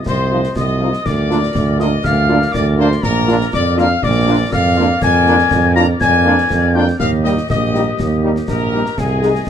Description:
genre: military-style march for wind band.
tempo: 121 BPM.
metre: 2/4.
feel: straight.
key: Bb major, Eb major from 5.0 s.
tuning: A4 = 439 Hz.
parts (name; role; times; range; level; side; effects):
clear woodwind section; second line; 0.0-9.5 s; F4 to Eb5; -26 LUFS; left 3 dB; none.
hollow wooden piccolo; second line; 0.0-9.5 s; Ab5 to Bb6; -21 LUFS; left 3 dB; none.
dark trumpet section; melody; 0.1-9.5 s; Ab4 to Bb5; -20 LUFS; left 5 dB; none.
clear tuba; bass; 0.1-9.5 s; Bb1 to F2; -16 LUFS; right 3 dB; none.
concert snare drum, concert bass drum and clash cymbals; drums; 0.1-9.5 s; none; -24 LUFS; left 1 dB; none.
warm French horn section; accompaniment; 0.3-9.3 s; Ab3 to Ab4; -22 LUFS; left 3 dB; none.
mellow trombone section; sustained chords; 0.3-9.3 s; F3 to Eb4; -22 LUFS; right 2 dB; none.
room: moderate studio reverb, RT60 0.7 s.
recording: dark, warm production.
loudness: -12 LUFS.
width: side -9 dB against mid.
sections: 0.0-9.5 A section.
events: none.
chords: 0.0 F7(no3)/C; 1.1 Bb/D; 3.0 Bb; 5.0 Bb7/F; 7.0 Eb; 9.0 Ab/C.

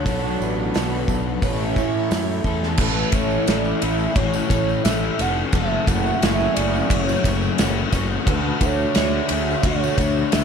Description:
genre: rock, shoegaze and dream pop.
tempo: 88 BPM.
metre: 4/4.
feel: straight.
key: A major.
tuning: A4 = 439 Hz.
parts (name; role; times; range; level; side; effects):
warm velvety synth lead; melody; 0.0-10.4 s; B4 to F#5; -27 LUFS; right 3 dB; chorus, analog delay.
phased string machine; sustained chords; 0.0-2.8 s; D4 to C#6; -34 LUFS; left 1 dB; ensemble chorus, phaser.
picked twelve-string acoustic guitar; arpeggios; 0.0-10.4 s; E4 to C#5; -33 LUFS; right 11 dB; lush chorus, analog delay.
electric guitar through a small old amp; riff; 0.0-10.4 s; F#2 to E4; -28 LUFS; right 12 dB; reverse reverb.
overdriven semi-hollow guitar; riff; 0.0-10.4 s; F#2 to A4; -25 LUFS; left 13 dB; wide subtle chorus.
fuzz fingered electric bass; bass; 0.0-10.4 s; F1 to A2; -25 LUFS; equal; overdrive.
loose indie drum kit; drums; 0.1-10.4 s; crash cymbal, hi-hat, kick drum, ride cymbal, snare drum; -23 LUFS; equal; none.
tambourine; percussion; 0.1-10.4 s; none; -40 LUFS; right 22 dB; none.
room: light reverb.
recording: dark, warm production.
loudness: -18 LUFS.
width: side -6 dB against mid.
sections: 0.0-2.8 A section; 2.8-10.4 B section.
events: none.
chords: 0.1 Bm; 1.4 A; 5.5 F#m7; 8.3 Dmaj7.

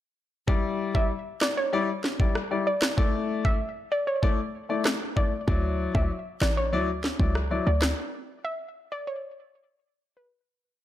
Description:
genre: dancehall.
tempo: 96 BPM.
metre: 4/4.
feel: straight.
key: E dorian.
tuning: A4 = 435 Hz.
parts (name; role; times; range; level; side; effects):
warm grand piano; accompaniment; 0.5-7.7 s; F#3 to D5; -29 LUFS; left 4 dB; none.
island pop drum kit; drums; 0.5-8.0 s; kick drum, rim click, snare drum; -26 LUFS; equal; none.
soft round pluck; melody; 0.9-10.3 s; B4 to E5; -31 LUFS; equal; chorus, ping-pong delay.
short 808-style bass; bass; 5.5-7.9 s; A1 to D2; -26 LUFS; equal; none.
room: light reverb.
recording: none.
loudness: -24 LUFS.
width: side -12 dB against mid.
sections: 0.5-10.5 verse.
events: break 8.0-10.5; fade-out 8.0-10.5.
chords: 0.5 Em7; 3.0 Asus4; 5.5 Dadd9; 8.0 N.C..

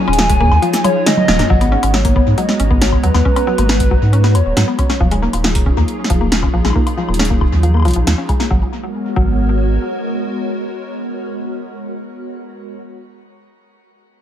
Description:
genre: IDM.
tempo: 137 BPM.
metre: 4/4.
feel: straight.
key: G# minor.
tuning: A4 = 439 Hz.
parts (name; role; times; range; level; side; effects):
warbly nostalgic lead; melody; 0.0-5.0 s; B4 to G#5; -19 LUFS; equal; chorus, vintage 12-bit sampler grit, tape echo, shimmer reverb.
hollow soft pad; sustained chords; 0.0-12.8 s; F#3 to A#5; -22 LUFS; equal; ensemble chorus, shimmer reverb.
mallet-like synth pluck; arpeggios; 0.1-9.3 s; E#3 to C#4; -21 LUFS; left 3 dB; chorus, tape echo, shimmer reverb.
warm sub bass; bass; 0.1-9.8 s; D#1 to G#2; -15 LUFS; equal; none.
electro analog drum machine; drums; 0.1-8.5 s; cabasa, congas, hi-hat, snare drum, toms, woodblock; -19 LUFS; equal; tape echo.
electronic kick drum; drums; 0.3-9.3 s; none; -16 LUFS; equal; none.
room: moderate spring reverb, RT60 1.3 s.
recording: echo-heavy mix.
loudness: -12 LUFS.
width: side -10 dB against mid.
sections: 0.0-1.5 A section; 1.5-8.5 B section; 8.5-12.0 C section.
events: kick drops out 0.6-1.5; drum fill 1.1-1.5; band accent 1.3; filter sweep on sub bass 1.5-8.5; filter sweep on synth arpeggio sound 1.5-8.5.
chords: 0.0 D#m11; 1.5 G#m11; 4.8 D#m11; 8.5 G#m11.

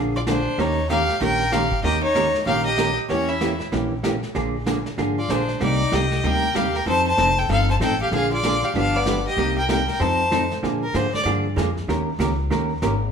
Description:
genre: country, western swing.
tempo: 191 BPM.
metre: 4/4.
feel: swing 62% on 8ths.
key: Bb mixolydian.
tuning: A4 = 439 Hz.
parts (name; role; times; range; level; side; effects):
vintage hollow-body jazz guitar; accompaniment; 0.0-12.9 s; C3 to Bb4; -24 LUFS; right 2 dB; none.
upright bass; bass; 0.0-13.1 s; F1 to Bb2; -26 LUFS; left 1 dB; none.
clear fiddle; melody; 0.2-10.5 s; C5 to A5; -22 LUFS; left 2 dB; none.
rich fiddle; second line; 0.2-11.3 s; B3 to D5; -27 LUFS; right 1 dB; none.
vintage brush drum kit; drums; 0.3-13.1 s; brushed snare drum, hi-hat, kick drum, snare drum; -31 LUFS; left 1 dB; none.
room: moderate large studio reverb, RT60 1.3 s.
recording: band playing live in one room.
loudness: -19 LUFS.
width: side -6 dB against mid.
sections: 0.0-10.6 A section; 10.6-13.1 B section.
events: fiddle solo 10.6-13.1.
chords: 0.0 Bb7; 0.6 Eb7; 3.1 Edim7; 4.3 Bb7; 5.6 Cm7; 6.9 F7; 8.1 Bb7; 8.7 G7; 9.4 Cm7; 10.0 F7; 10.6 Bb7; 11.9 Eb7.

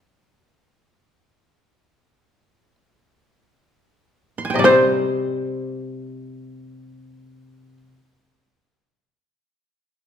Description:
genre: japanese traditional, Japanese chamber music.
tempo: free time.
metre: none.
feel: none.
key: C hirajoshi.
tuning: A4 = 440 Hz.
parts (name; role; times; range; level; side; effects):
shamisen; melody; 0.0-7.8 s; C5; -17 LUFS; equal; none.
koto; second line; 0.0-7.8 s; C5 to C6; -19 LUFS; right 2 dB; none.
koto; accompaniment; 4.5-7.9 s; C3 to C4; -23 LUFS; left 4 dB; none.
room: wet recital hall reverb, RT60 1.5 s.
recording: minimal, uncompressed stereo recording.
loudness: -17 LUFS.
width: side -9 dB against mid.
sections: 0.0-4.7 A section; 4.7-10.1 B section.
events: slowing down 0.0-4.7.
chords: none.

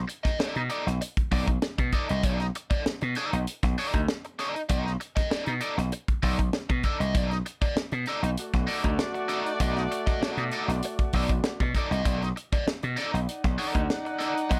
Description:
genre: funk.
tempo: 98 BPM.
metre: 4/4.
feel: straight.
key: unclear.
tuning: A4 = 442 Hz.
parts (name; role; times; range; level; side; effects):
gritty slap bass; bass; 0.0-14.6 s; B1 to B2; -31 LUFS; equal; overdrive.
crunchy overdriven guitar; accompaniment; 0.1-14.6 s; D#4 to D#5; -33 LUFS; equal; wah.
tight funk drum kit; drums; 0.1-14.6 s; hi-hat, kick drum, snare drum; -30 LUFS; equal; none.
warm horn section; second line; 8.4-14.6 s; A3 to F#5; -34 LUFS; equal; analog delay.
room: little or no reverb.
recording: none.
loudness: -28 LUFS.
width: mono.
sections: 0.0-14.6 A section.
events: none.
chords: 0.0 B7#9.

